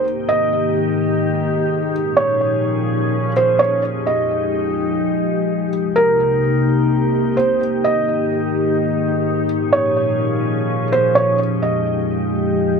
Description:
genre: hip hop.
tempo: 127 BPM.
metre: 4/4.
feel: half-time.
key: Ab major.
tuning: A4 = 440 Hz.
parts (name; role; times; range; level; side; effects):
felt-muted upright piano; melody; 0.0-12.8 s; Bb4 to Eb5; -19 LUFS; right 2 dB; ping-pong delay.
glassy FM pad; sustained chords; 0.0-12.8 s; C2 to Ab4; -18 LUFS; left 1 dB; ensemble chorus, built-in reverb.
room: wet booth ambience, RT60 0.2 s.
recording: none.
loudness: -15 LUFS.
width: side -5 dB against mid.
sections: 0.1-12.8 A section.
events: none.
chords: 0.1 Absus2; 1.9 Bbm7; 3.8 Fm9; 5.7 Cm7; 7.6 Absus2; 9.5 Bbm7; 11.4 Fm9.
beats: | 0.05 0.52 0.99 1.47 | 1.94 2.41 2.88 3.36 | 3.83 4.30 4.77 5.25 | 5.72 6.19 6.66 7.14 | 7.61 8.08 8.55 9.03 | 9.50 9.97 10.44 10.92 | 11.39 11.86 12.33.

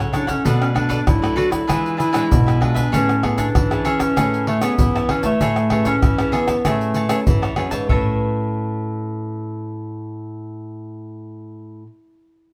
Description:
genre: samba and choro.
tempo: 97 BPM.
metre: 4/4.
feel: straight.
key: A major.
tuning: A4 = 438 Hz.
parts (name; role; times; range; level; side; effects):
cavaquinho; accompaniment; 0.0-11.9 s; D4 to A5; -28 LUFS; equal; none.
nylon-string guitar; accompaniment; 0.0-11.9 s; A2 to B4; -29 LUFS; equal; none.
nylon-string guitar; bass; 0.0-11.8 s; F#2 to A3; -26 LUFS; equal; none.
egg shaker, pandeiro, tamborim and surdo; percussion; 0.0-8.0 s; none; -23 LUFS; equal; none.
warm clarinet; melody; 0.1-7.3 s; A3 to F#4; -23 LUFS; equal; none.
room: wet studio reverb, RT60 0.6 s.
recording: band playing live in one room.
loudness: -19 LUFS.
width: mono.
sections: 0.0-7.9 A section; 7.9-10.4 B section.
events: none.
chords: 0.5 Bm7; 1.7 E7b9; 2.9 Amaj9; 7.9 Aadd9.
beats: | 0.45 1.07 1.69 2.31 | 2.93 3.55 4.17 4.79 | 5.41 6.03 6.65 7.26 | 7.88 8.50 9.12 9.74.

